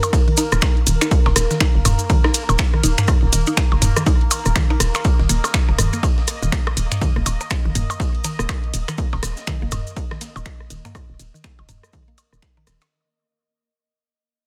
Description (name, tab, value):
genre	minimal techno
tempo	122 BPM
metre	4/4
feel	swing 60% on 16ths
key	unclear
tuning	A4 = 439 Hz
part	maracas	percussion	0.0-12.9 s	none	-29 LUFS	equal	none
part	minimal click drum kit	percussion	0.0-12.9 s	percussion blips, rim click, toms	-26 LUFS	equal	overdrive, dub echo
part	bubbling stepped-filter texture	texture	0.0-12.9 s	Bb3 to Eb5	-32 LUFS	equal	chorus, built-in reverb, sidechain pumping
part	breakbeat sampler-style drum kit	drums	0.1-12.9 s	ride cymbal, snare drum	-38 LUFS	equal	none
part	electronic kick drum	drums	0.1-12.5 s	none	-21 LUFS	equal	none
part	mallet-like synth pluck	riff	0.3-12.7 s	Eb3 to Eb4	-29 LUFS	equal	chorus, sidechain pumping, delay
part	punchy analog drum machine	drums	0.4-12.9 s	finger snaps, hi-hat	-25 LUFS	equal	none
part	hollow knocking FM bass	bass	0.5-12.8 s	Eb1 to Gb1	-23 LUFS	equal	sidechain pumping
room	digital ambience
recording	none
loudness	-19 LUFS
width	mono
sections	0.0-12.9 A section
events	drop 0.0-12.9; fade-out 5.0-12.9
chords	0.0 Eb5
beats	0.13 0.62 | 1.11 1.60 2.10 2.59 | 3.08 3.57 4.06 4.56 | 5.05 5.54 6.03 6.52 | 7.01 7.51 8.00 8.49 | 8.98 9.47 9.97 10.46 | 10.95 11.44 11.93 12.43